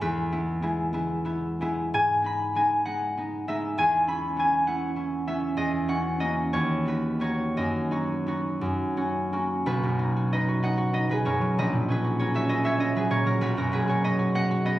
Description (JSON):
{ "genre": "classical, solo harp piece", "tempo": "56-68 BPM (dotted quarters)", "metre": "6/8", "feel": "rubato", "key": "B major", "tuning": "A4 = 440 Hz", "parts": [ { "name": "concert harp", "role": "solo", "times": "0.0-14.8 s", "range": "A#1 to B5", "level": "-24 LUFS", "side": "equal", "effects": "none" } ], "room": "moderate recital hall reverb, RT60 1.4 s", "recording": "recorded on a phone in the room, studio reverb, compression", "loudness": "-24 LUFS", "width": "side -15 dB against mid", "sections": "0.0-9.7 A section; 9.7-14.8 B section", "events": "none", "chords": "0.0 E; 1.9 G#m; 3.8 C#m7/E; 5.6 F#7/E; 6.5 B/D#; 7.6 B/F#; 8.6 F#; 9.7 B; 11.6 F#/A#; 13.4 B", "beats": "| 0.02 0.93 | 1.94 2.85 | 3.78 4.68 | 5.58 6.54 | 7.56 8.64 | 9.69 10.65 | 11.58 12.51 | 13.43 14.36" }